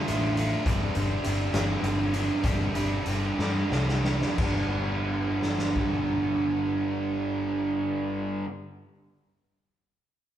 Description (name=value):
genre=indie rock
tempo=58-69 BPM (dotted quarters)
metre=6/8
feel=straight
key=G major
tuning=A4 = 440 Hz
part: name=fuzz guitar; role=riff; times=0.0-8.5 s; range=G2 to G4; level=-27 LUFS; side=right 2 dB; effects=distortion
part: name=growling picked electric bass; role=bass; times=0.1-8.4 s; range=G1 to G2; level=-31 LUFS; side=left 1 dB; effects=overdrive
part: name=raw garage drum kit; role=drums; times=0.1-5.9 s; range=crash cymbal, hi-hat, kick drum, snare drum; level=-31 LUFS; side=left 1 dB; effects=none
room=wet large studio reverb, RT60 1.4 s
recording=band playing live in one room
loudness=-25 LUFS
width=side -11 dB against mid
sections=0.0-4.4 A section; 4.4-8.5 B section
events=slowing down 0.7-4.4; drum fill 3.4-4.4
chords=0.0 Dm; 0.7 Gsus4; 4.4 G